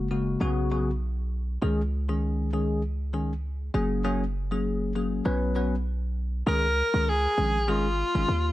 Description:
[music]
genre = afrobeats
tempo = 99 BPM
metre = 4/4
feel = swing 55% on 16ths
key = Db mixolydian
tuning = A4 = 440 Hz
[part]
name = bell-like tine electric piano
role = accompaniment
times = 0.0-8.3 s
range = Db3 to Cb5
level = -28 LUFS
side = left 2 dB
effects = analog chorus, plate reverb
[part]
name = warm 808-style bass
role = bass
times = 0.0-8.5 s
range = Gb1 to Eb2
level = -28 LUFS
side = right 1 dB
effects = none
[part]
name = breathy tenor saxophone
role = melody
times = 6.5-8.5 s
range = F4 to Bb4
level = -25 LUFS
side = left 1 dB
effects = plate reverb, ping-pong delay
[sound]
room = light reverb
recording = none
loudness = -24 LUFS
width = side -15 dB against mid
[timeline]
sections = 0.0-6.5 A section; 6.5-8.5 B section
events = none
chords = 0.4 Cbsus2; 1.6 Dbsus2; 3.7 Gbadd9; 5.3 Cbsus2; 6.5 Dbsus2

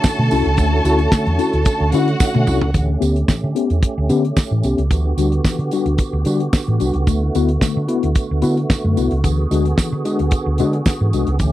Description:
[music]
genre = disco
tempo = 111 BPM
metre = 4/4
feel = straight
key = D major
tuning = A4 = 440 Hz
[part]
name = clear studio string section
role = second line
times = 0.0-2.7 s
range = F#4 to A5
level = -22 LUFS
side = equal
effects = none
[part]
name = mellow tine electric piano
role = accompaniment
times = 0.0-11.5 s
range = A2 to G4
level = -20 LUFS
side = left 4 dB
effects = medium stereo tremolo, low-pass filter
[part]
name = tonewheel organ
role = sustained chords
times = 0.0-11.5 s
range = D3 to G#4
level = -24 LUFS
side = right 3 dB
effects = overdrive, chorus vibrato, slow rotary speaker, low-pass filter
[part]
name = damped 70s drum kit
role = drums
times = 0.0-11.5 s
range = hi-hat, kick drum, snare drum, toms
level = -17 LUFS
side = equal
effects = none
[part]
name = tambourine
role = percussion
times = 0.0-11.5 s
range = none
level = -34 LUFS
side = right 18 dB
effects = none
[part]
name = hollow-body short-scale fingered electric bass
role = bass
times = 0.2-11.5 s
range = C2 to D3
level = -18 LUFS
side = equal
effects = none
[sound]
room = little or no reverb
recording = dry, close 1970s-style studio recording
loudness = -15 LUFS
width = side -14 dB against mid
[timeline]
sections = 0.0-2.7 A section; 2.7-11.5 B section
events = drum fill 2.2-2.7; filter sweep 2.7-11.5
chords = 0.0 Dmaj7; 2.7 A7/D; 4.9 Em7/D; 7.1 D6; 9.2 E7/D

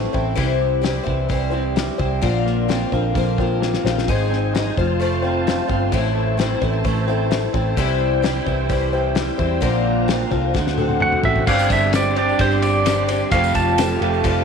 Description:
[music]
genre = folk rock and heartland rock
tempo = 130 BPM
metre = 4/4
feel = straight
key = C mixolydian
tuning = A4 = 440 Hz
[part]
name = picked twelve-string acoustic guitar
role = accompaniment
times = 0.0-14.4 s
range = A2 to C5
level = -22 LUFS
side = left 10 dB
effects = none
[part]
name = electric guitar through a small old amp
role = riff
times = 0.0-14.4 s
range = F2 to G4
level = -25 LUFS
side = right 15 dB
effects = analog chorus
[part]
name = hollow-body short-scale picked electric bass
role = bass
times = 0.0-14.4 s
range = F1 to E2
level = -22 LUFS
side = right 2 dB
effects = none
[part]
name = cloth-damped thuddy drum kit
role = drums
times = 0.1-14.4 s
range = crash cymbal, hi-hat, kick drum, ride cymbal, snare drum, toms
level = -24 LUFS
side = left 3 dB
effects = none
[part]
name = bright tonewheel organ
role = sustained chords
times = 4.1-14.4 s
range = D4 to C6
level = -29 LUFS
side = right 2 dB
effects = slow rotary speaker, overdrive, chorus vibrato
[part]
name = pedal steel guitar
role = melody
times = 11.0-14.4 s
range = C5 to A5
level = -20 LUFS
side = right 2 dB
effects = none
[part]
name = tambourine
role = percussion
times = 11.5-14.4 s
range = none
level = -37 LUFS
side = right 16 dB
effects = none
[sound]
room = moderate echo chamber reverb, RT60 1.6 s, small room ambience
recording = 1960s-style stereo with parts hard left and right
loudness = -17 LUFS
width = side -6 dB against mid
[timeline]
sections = 0.0-11.5 A section; 11.5-14.4 B section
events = drum fill 3.6-4.1, 10.6-11.5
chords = 0.4 C; 2.2 Bbadd9; 4.1 Ab; 4.8 F; 5.9 Am; 7.8 C; 9.6 Bbadd9; 10.6 D7; 11.5 Gsus4; 13.3 Fadd9

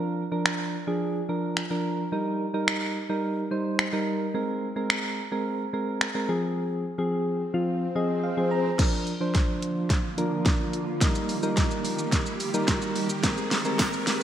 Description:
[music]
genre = dance-pop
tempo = 108 BPM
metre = 4/4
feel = straight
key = Eb major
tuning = A4 = 440 Hz
[part]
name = soft electric-piano-like synth keys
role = accompaniment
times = 0.0-14.2 s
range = F3 to Bb5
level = -27 LUFS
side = equal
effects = chorus, sidechain pumping
[part]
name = pop drum kit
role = drums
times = 0.5-14.2 s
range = crash cymbal, finger snaps, hi-hat, kick drum, shaker, snare drum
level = -26 LUFS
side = equal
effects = gated reverb
[part]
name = swell and riser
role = sound effects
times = 7.7-14.2 s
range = none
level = -36 LUFS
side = left 1 dB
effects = none
[part]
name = granular cloud pad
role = sustained chords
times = 9.6-14.2 s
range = D3 to Ab4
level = -33 LUFS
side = right 3 dB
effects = built-in reverb, sidechain pumping
[part]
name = tambourine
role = percussion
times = 13.8-13.9 s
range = none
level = -42 LUFS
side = right 11 dB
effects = none
[sound]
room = moderate lush hall reverb, RT60 1.7 s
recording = bright 1980s-style digital production, high-pass filter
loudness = -24 LUFS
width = side -10 dB against mid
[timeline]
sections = 0.0-8.8 A section; 8.8-14.2 B section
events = swell 7.7-8.8; synth keys fill 7.7-8.8; build-up 8.8-14.2; drum fill 8.8-14.2; riser 8.8-14.2; filter sweep 8.8-14.2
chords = 0.0 Bb; 2.1 Eb; 4.3 Abadd9; 6.3 Fm; 8.8 Bb; 11.0 Eb; 13.2 Abadd9

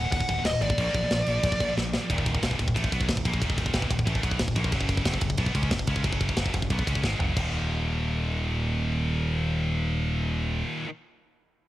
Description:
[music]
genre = heavy metal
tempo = 182 BPM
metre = 4/4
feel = straight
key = Eb minor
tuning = A4 = 440 Hz
[part]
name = high-gain lead guitar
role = melody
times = 0.0-1.7 s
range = D5 to Gb5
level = -29 LUFS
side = left 1 dB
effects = distortion, cassette tape, analog delay
[part]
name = scooped high-gain guitar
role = riff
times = 0.0-10.9 s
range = Eb2 to Db4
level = -30 LUFS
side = equal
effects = distortion
[part]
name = growling fingered electric bass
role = bass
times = 0.0-10.6 s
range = Eb1 to Db2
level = -28 LUFS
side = equal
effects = overdrive
[part]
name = tight metal drum kit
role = drums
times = 0.1-7.4 s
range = crash cymbal, kick drum, ride cymbal, snare drum, toms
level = -28 LUFS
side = equal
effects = cassette tape
[sound]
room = little or no reverb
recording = home recording on cassette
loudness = -24 LUFS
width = side -15 dB against mid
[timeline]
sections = 0.0-2.1 A section; 2.1-7.4 B section; 7.4-10.0 C section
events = drum fill 1.8-2.1, 7.0-7.4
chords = 0.0 Ebm; 0.8 Bb; 2.1 Ebm; 4.7 Gb5; 7.4 Eb5

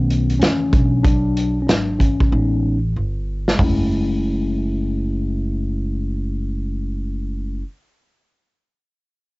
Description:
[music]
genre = hip hop, jazz-hop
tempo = 94 BPM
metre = 4/4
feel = swing 63% on 16ths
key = F# minor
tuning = A4 = 440 Hz
[part]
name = mellow tine electric piano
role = accompaniment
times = 0.0-7.6 s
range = D#3 to E4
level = -22 LUFS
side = left 2 dB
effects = medium stereo tremolo, cassette tape
[part]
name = upright bass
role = bass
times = 0.0-7.6 s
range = F#1 to B1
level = -22 LUFS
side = equal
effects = tube saturation
[part]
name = vintage drum kit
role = drums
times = 0.1-3.8 s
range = hi-hat, kick drum, snare drum, toms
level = -18 LUFS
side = equal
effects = cassette tape
[sound]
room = light reverb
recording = home recording on cassette, nothing above 7.8 kHz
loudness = -17 LUFS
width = side -23 dB against mid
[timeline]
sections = 0.0-3.6 A section; 3.6-6.1 B section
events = tine electric piano solo 0.0-3.6; drum fill 2.3-3.6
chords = 0.0 B9; 0.7 E9/B; 2.3 Amaj9#11; 3.6 F#m9

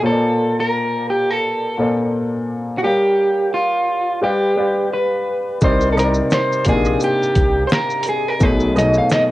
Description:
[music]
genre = lo-fi hip hop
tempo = 86 BPM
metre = 4/4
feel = swing 57% on 16ths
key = C minor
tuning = A4 = 445 Hz
[part]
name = electric guitar at the edge of break-up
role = melody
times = 0.0-9.2 s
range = F4 to F5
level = -18 LUFS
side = right 1 dB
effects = none
[part]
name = dark upright piano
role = accompaniment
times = 0.0-9.3 s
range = Bb2 to F5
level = -20 LUFS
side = left 1 dB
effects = cassette tape
[part]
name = smooth synth bass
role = bass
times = 5.6-9.0 s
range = Bb1 to C2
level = -21 LUFS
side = equal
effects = none
[part]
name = lo-fi sampler-style drum kit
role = drums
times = 5.6-9.3 s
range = finger snaps, hi-hat, kick drum, shaker, snare drum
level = -18 LUFS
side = equal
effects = cassette tape
[part]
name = maracas and woodblock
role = percussion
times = 5.6-9.3 s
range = none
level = -35 LUFS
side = right 4 dB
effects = none
[sound]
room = moderate spring reverb, RT60 2.7 s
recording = home recording on cassette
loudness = -15 LUFS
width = side -16 dB against mid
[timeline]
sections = 0.0-5.6 A section; 5.6-9.3 B section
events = none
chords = 0.0 Bbmaj7; 2.8 Gm7b5; 4.2 G7; 5.6 Cm7; 8.4 B13

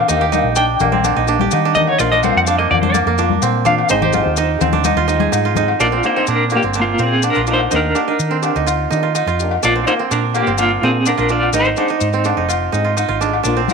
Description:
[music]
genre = highlife guitar band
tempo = 126 BPM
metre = 4/4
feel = straight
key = Bb mixolydian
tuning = A4 = 441 Hz
[part]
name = clean electric guitar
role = melody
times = 0.0-13.7 s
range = Bb3 to G5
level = -17 LUFS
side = left 1 dB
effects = tremolo
[part]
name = koto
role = arpeggios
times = 0.0-13.7 s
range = Bb3 to Ab4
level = -18 LUFS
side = right 12 dB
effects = tape echo
[part]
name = hollow-body short-scale fingered electric bass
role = bass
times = 0.0-13.7 s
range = F1 to Eb3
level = -21 LUFS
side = equal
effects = none
[part]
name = fingerpicked old ladder-braced acoustic guitar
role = accompaniment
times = 0.1-13.7 s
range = Eb3 to Ab4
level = -25 LUFS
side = left 12 dB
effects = none
[part]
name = maracas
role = percussion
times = 0.1-13.7 s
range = none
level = -26 LUFS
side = left 16 dB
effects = none
[part]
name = agogo bells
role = percussion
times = 0.3-13.7 s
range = none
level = -24 LUFS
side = left 16 dB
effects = none
[part]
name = congas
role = percussion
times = 0.3-5.7, 13.7 s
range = none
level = -22 LUFS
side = left 12 dB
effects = none
[sound]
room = light reverb, small room ambience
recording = 1960s-style stereo with parts hard left and right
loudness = -13 LUFS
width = side -5 dB against mid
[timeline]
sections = 0.0-5.8 A section; 5.8-13.7 B section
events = clean electric guitar solo 0.0-5.8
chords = 0.1 Ebmaj7; 3.9 Ab; 5.8 Bb; 7.7 Ebmaj7; 9.6 Bb; 11.5 Ab

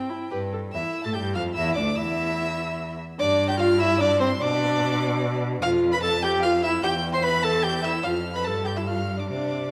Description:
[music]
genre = quick classical-period movement for string quartet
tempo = 148 BPM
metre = 3/4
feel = straight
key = unclear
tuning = A4 = 441 Hz
[part]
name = rich violin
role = melody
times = 0.0-9.7 s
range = G5 to C7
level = -33 LUFS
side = equal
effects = none
[part]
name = rich viola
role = accompaniment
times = 0.0-9.7 s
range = C4 to C5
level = -28 LUFS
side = equal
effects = none
[part]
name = rich violin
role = second line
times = 0.3-9.7 s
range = B4 to C6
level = -30 LUFS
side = equal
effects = none
[part]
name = clear cello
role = bass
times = 0.3-9.7 s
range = D2 to C3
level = -31 LUFS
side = equal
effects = none
[sound]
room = moderate concert hall reverb, RT60 2.1 s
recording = none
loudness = -24 LUFS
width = mono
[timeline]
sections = 0.7-9.7 A section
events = none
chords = 0.3 G; 0.7 Fmaj13; 2.0 N.C.; 3.2 Dm11/G; 4.4 Bm; 5.6 Fmaj9; 6.8 Emadd11; 8.1 N.C.; 8.5 Emadd11/G (rootless)

